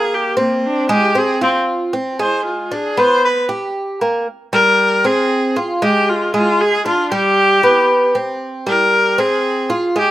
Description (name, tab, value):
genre	latin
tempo	116 BPM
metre	4/4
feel	straight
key	unclear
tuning	A4 = 441 Hz
part	clear viola	melody	0.0-10.1 s	Bb3 to C5	-15 LUFS	equal	slapback echo
part	Cuban tres	arpeggios	0.0-10.1 s	G3 to G4	-16 LUFS	equal	none
room	little or no reverb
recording	recorded outdoors, with no room sound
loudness	-13 LUFS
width	side -14 dB against mid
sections	0.0-4.3 A section; 4.3-10.1 B section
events	viola solo 0.0-4.3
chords	0.1 Abmaj9#11; 1.2 F5; 2.2 G#dim7; 3.2 G; 4.3 C5; 5.3 Fm; 6.3 Fm69; 7.4 G; 8.4 C5; 9.4 Fm